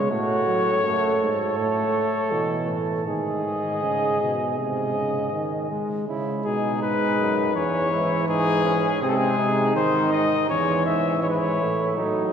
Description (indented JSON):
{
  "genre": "classical, imitative canzona for brass ensemble",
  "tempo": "81 BPM",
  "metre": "4/4",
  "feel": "straight",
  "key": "C# minor",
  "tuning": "A4 = 441 Hz",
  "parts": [
    { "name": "mellow trumpet", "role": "melody", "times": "0.0-12.0 s", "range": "G#4 to E5", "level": "-25 LUFS", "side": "left 4 dB", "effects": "none" },
    { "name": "warm trombone", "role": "accompaniment", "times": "0.0-12.3 s", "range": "B2 to A3", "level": "-27 LUFS", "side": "right 1 dB", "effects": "none" },
    { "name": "clear bass trombone", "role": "bass", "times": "0.0-12.3 s", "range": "E2 to C#3", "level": "-28 LUFS", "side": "right 2 dB", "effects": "none" },
    { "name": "mellow flugelhorn", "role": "second line", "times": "0.1-12.3 s", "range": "B#3 to A4", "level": "-27 LUFS", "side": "right 4 dB", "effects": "none" }
  ],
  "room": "wet cathedral reverb, RT60 4.7 s",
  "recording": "heard from further back in the room",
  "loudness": "-21 LUFS",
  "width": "side -8 dB against mid",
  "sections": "0.0-6.1 A section; 6.1-12.0 B section",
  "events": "none",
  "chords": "0.1 F#m/A; 1.6 A; 3.1 G#sus4; 4.6 G#; 6.1 C#m; 7.6 C#m/E; 9.0 G#/B#; 10.5 C#m/E",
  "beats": "| 0.12 0.85 1.58 2.32 | 3.07 3.83 4.58 5.34 | 6.09 6.83 7.56 8.29 | 9.02 9.76 10.49 11.23 | 11.97"
}